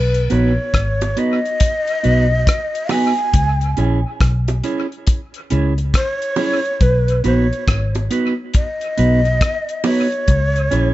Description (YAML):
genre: roots reggae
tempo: 69 BPM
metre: 4/4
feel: swing 63% on 16ths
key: B major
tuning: A4 = 440 Hz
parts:
  - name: breathy mellow shakuhachi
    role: melody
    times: 0.0-10.9 s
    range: B4 to G#5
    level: -20 LUFS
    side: equal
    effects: tape echo, plate reverb
  - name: vintage muted fingered electric bass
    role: bass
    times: 0.0-10.9 s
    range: G#1 to C#2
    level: -17 LUFS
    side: equal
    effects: none
  - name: damped 70s drum kit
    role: drums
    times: 0.1-10.9 s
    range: hi-hat, kick drum, rim click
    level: -18 LUFS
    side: equal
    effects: dub echo
  - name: mellow electric guitar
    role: accompaniment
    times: 0.3-10.9 s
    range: B3 to C#5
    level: -20 LUFS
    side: right 2 dB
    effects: tape echo
  - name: bongos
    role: percussion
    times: 1.0-10.1 s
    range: none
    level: -24 LUFS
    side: right 3 dB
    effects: none
room: moderate small room reverb, RT60 0.5 s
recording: nothing above 7.8 kHz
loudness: -15 LUFS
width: side -16 dB against mid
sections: 0.0-10.9 A section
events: none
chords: 0.0 B; 3.3 C#m; 6.8 B; 10.3 C#m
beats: 0.74 1.60 2.47 | 3.34 4.21 5.08 5.94 | 6.81 7.68 8.55 9.41 | 10.28